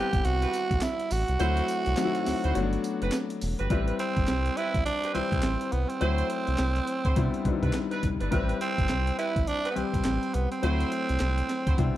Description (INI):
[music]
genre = R&B, new jack swing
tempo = 104 BPM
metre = 4/4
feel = swing 60% on 16ths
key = A dorian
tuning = A4 = 439 Hz
[part]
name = growling tenor saxophone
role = melody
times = 0.0-12.0 s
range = B3 to G4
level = -30 LUFS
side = right 3 dB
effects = slapback echo
[part]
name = warm grand piano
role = accompaniment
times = 0.0-12.0 s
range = F#3 to B4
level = -32 LUFS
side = left 6 dB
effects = none
[part]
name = warm horn section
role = stabs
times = 0.0-11.8 s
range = C4 to C5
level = -35 LUFS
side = right 3 dB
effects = none
[part]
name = round analog bass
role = bass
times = 0.0-11.9 s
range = E1 to C3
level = -28 LUFS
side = equal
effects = none
[part]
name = breakbeat sampler-style drum kit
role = drums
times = 0.1-11.9 s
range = handclaps, hi-hat, kick drum, snare drum, tambourine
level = -30 LUFS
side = equal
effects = none
[sound]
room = studio reverb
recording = dark, warm production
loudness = -25 LUFS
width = side -14 dB against mid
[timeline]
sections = 0.0-3.7 A section; 3.7-12.0 B section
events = kick muted 1.4-3.7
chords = 0.0 Am9; 1.4 D9; 2.6 Gmaj7; 3.7 Am9; 6.0 D9; 7.2 Cmaj9; 8.3 Am9; 10.6 D9